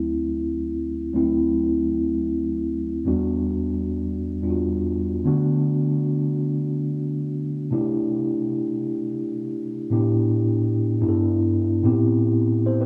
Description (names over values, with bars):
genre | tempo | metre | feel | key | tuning
disco | 109 BPM | 4/4 | straight | unclear | A4 = 440 Hz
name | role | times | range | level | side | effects
mellow tine electric piano | solo | 0.0-12.9 s | D2 to C5 | -23 LUFS | equal | none
room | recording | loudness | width
moderate spring reverb, RT60 1.8 s | home recording on cassette, small room ambience | -23 LUFS | mono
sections
0.0-1.1 A section; 1.1-9.9 B section; 9.9-12.9 C section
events
none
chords
0.0 D7; 3.1 Em7; 5.3 D6; 7.7 C6; 9.9 A7sus4; 11.0 G6; 11.8 Am7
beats
0.05 0.60 | 1.15 1.70 2.24 2.79 | 3.34 3.89 4.43 4.98 | 5.53 6.08 6.63 7.17 | 7.72 8.27 8.82 9.37 | 9.92 10.47 11.02 11.57 | 12.12 12.67